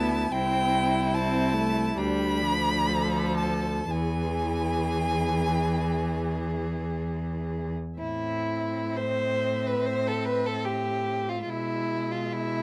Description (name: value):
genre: classical, slow romantic movement for string quartet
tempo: 54-77 BPM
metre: 4/4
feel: rubato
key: A minor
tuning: A4 = 440 Hz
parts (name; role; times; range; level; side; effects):
- warm violin; melody; 0.0-12.6 s; E5 to B5; -34 LUFS; equal; none
- rich violin; second line; 0.0-12.6 s; D4 to C5; -33 LUFS; equal; none
- rich viola; accompaniment; 0.0-12.6 s; E3 to C4; -35 LUFS; equal; none
- rich cello; bass; 0.0-12.6 s; C2 to B2; -32 LUFS; equal; none
room: light reverb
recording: close, detailed microphones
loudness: -27 LUFS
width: mono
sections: 0.0-8.0 A section; 8.0-12.6 B section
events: none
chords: 0.3 Am/C; 2.0 Dm; 3.9 E; 8.0 Am; 11.5 E/B